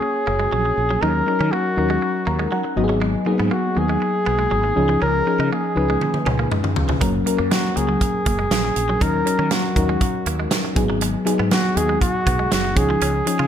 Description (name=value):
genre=1980s-style pop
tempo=120 BPM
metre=4/4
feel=straight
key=F# major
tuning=A4 = 440 Hz
part: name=warm flugelhorn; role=melody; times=0.0-13.5 s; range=F#4 to A#4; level=-22 LUFS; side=equal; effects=none
part: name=mellow FM electric piano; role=accompaniment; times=0.0-13.5 s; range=E#3 to A#5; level=-22 LUFS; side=left 2 dB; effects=chorus
part: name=direct-recorded clean electric guitar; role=riff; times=0.0-13.5 s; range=E#3 to E#4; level=-29 LUFS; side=right 4 dB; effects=analog chorus, digital delay
part: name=mellow fretless electric bass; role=bass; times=0.3-13.5 s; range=F#1 to D#3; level=-24 LUFS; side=right 1 dB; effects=analog chorus
part: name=modern studio drum kit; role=drums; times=6.0-13.4 s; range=hi-hat, kick drum, snare drum, toms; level=-22 LUFS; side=right 2 dB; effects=gated reverb
room=moderate plate reverb, RT60 1.4 s, studio ambience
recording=bright 1980s-style digital production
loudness=-17 LUFS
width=side -9 dB against mid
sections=0.0-13.5 A section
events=FM electric piano fill 2.0-3.0; drum fill 6.0-7.0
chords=0.0 F#; 1.0 D#m7; 2.8 G#m7; 4.8 C#add9; 7.0 F#; 9.0 D#m7; 10.8 G#m7; 12.8 C#add9